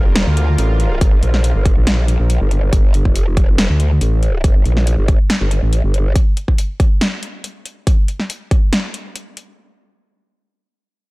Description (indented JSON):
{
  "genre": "heavy wobble dubstep",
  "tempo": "140 BPM",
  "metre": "4/4",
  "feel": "half-time",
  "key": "G minor",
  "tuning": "A4 = 440 Hz",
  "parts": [
    { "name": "supersaw pad", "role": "sustained chords", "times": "0.0-2.7 s", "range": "D3 to Bb4", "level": "-27 LUFS", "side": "right 1 dB", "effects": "sidechain pumping" },
    { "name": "growl bass", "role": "bass", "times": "0.0-6.1 s", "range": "F1 to D2", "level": "-14 LUFS", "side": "equal", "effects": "chorus, overdrive" },
    { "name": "big-room dance drum kit", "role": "drums", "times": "0.2-9.5 s", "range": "hi-hat, snare drum", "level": "-20 LUFS", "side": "equal", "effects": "none" },
    { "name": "electronic kick drum", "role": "drums", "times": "1.0-8.6 s", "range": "none", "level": "-14 LUFS", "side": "equal", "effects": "overdrive" }
  ],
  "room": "little or no reverb",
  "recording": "dark, warm production",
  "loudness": "-13 LUFS",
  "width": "side -22 dB against mid",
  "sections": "0.0-9.6 A section",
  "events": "none",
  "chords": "0.0 Gm"
}